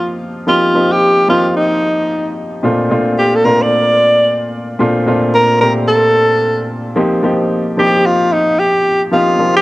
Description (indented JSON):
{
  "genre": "R&B",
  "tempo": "111 BPM",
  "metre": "4/4",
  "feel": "swing 62% on 16ths",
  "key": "Bb major",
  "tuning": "A4 = 441 Hz",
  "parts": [
    { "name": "bright alto saxophone", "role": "melody", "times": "0.0-9.6 s", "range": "Eb4 to D5", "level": "-12 LUFS", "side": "equal", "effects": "none" },
    { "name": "warm baby grand piano", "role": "accompaniment", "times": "0.0-9.6 s", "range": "Bb2 to A5", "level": "-15 LUFS", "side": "equal", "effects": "cassette tape" }
  ],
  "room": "moderate spring reverb, RT60 2.1 s",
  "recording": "home recording on cassette",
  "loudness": "-11 LUFS",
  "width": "side -18 dB against mid",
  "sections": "0.0-9.6 A section",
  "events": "none",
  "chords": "0.0 F7sus4; 2.6 Bbmaj7; 7.0 F7sus4"
}